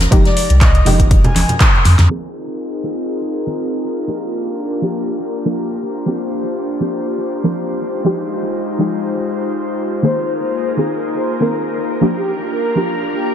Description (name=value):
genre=deep house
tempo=121 BPM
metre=4/4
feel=swing 54% on 16ths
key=F dorian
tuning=A4 = 439 Hz
part: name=warm sub bass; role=bass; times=0.0-2.1 s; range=F1 to F2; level=-12 LUFS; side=equal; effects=sidechain pumping
part: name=deep house drum kit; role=drums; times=0.0-2.2 s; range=crash cymbal, handclaps, hi-hat, snare drum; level=-19 LUFS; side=equal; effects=overdrive, studio reverb
part: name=jazz brush drum kit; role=drums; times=0.0-2.1 s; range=hi-hat, snare drum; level=-27 LUFS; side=left 2 dB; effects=sidechain pumping on hats, high-pass filter on hats, studio reverb, high-pass filter on snare, high-pass filter on room
part: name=congas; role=percussion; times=0.0-2.1 s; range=none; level=-21 LUFS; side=right 1 dB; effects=none
part: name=string machine, violins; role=texture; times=0.0-2.1, 10.0-13.3 s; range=Bb4 to Bb5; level=-30 LUFS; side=left 1 dB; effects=ensemble chorus
part: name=filtered dub chord stab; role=stabs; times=0.1-13.3 s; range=Eb3 to Bb4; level=-20 LUFS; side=equal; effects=chorus, sidechain pumping, analog delay
part: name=electronic kick drum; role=drums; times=0.1-1.7 s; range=none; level=-12 LUFS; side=equal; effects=studio reverb
part: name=mellow horn-like synth lead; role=melody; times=0.3-1.5, 10.0-13.3 s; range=G4 to Ab5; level=-22 LUFS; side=left 1 dB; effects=chorus, analog delay
part: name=airy breathy pad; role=sustained chords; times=2.1-13.3 s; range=Ab3 to C5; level=-20 LUFS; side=left 1 dB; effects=chorus, sidechain pumping
room=light reverb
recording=low-pass filter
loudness=-15 LUFS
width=side -9 dB against mid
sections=0.0-2.1 A section; 2.1-13.3 B section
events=band accent 1.6; drum fill 1.9; filter sweep 2.1-13.3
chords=0.0 Fm9; 2.1 Bb9sus4; 4.1 Gm7; 5.8 C7sus4; 7.8 Fm9; 10.0 Bb9sus4; 12.0 Gm7